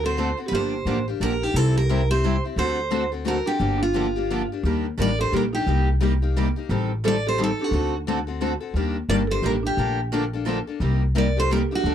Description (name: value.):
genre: acoustic string swing (jazz manouche).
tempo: 175 BPM.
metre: 3/4.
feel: swing 60% on 8ths.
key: unclear.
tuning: A4 = 440 Hz.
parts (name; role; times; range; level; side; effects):
picked steel-string acoustic guitar; melody; 0.0-11.9 s; F4 to D5; -26 LUFS; right 2 dB; none.
buzzing marimba with medium mallets; second line; 0.0-11.9 s; D4 to Bb4; -30 LUFS; right 5 dB; none.
picked steel-string acoustic guitar; accompaniment; 0.0-11.9 s; C3 to A4; -28 LUFS; left 10 dB; none.
upright bass; bass; 0.0-11.9 s; G1 to Eb2; -24 LUFS; equal; none.
picked steel-string acoustic guitar; accompaniment; 0.2-11.9 s; C3 to Bb4; -29 LUFS; right 6 dB; none.
room: little or no reverb.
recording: dry, close 1970s-style studio recording.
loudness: -20 LUFS.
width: side -9 dB against mid.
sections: 0.0-4.6 A section; 4.6-11.9 B section.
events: none.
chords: 0.0 D7; 0.5 Gm7; 1.6 C; 2.6 D7; 3.6 Gm7; 4.6 Ebmaj7; 5.7 Cm7; 6.7 Am7b5; 7.7 D7; 8.8 Ebmaj7; 9.8 Bbmaj7; 10.8 Cm7.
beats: 0.18 | 0.53 0.87 1.21 | 1.55 1.90 2.24 | 2.58 2.92 3.27 | 3.61 3.95 4.30 | 4.64 4.98 5.33 | 5.67 6.01 6.35 | 6.70 7.04 7.38 | 7.73 8.07 8.41 | 8.76 9.10 9.44 | 9.78 10.13 10.47 | 10.81 11.15 11.50 | 11.84.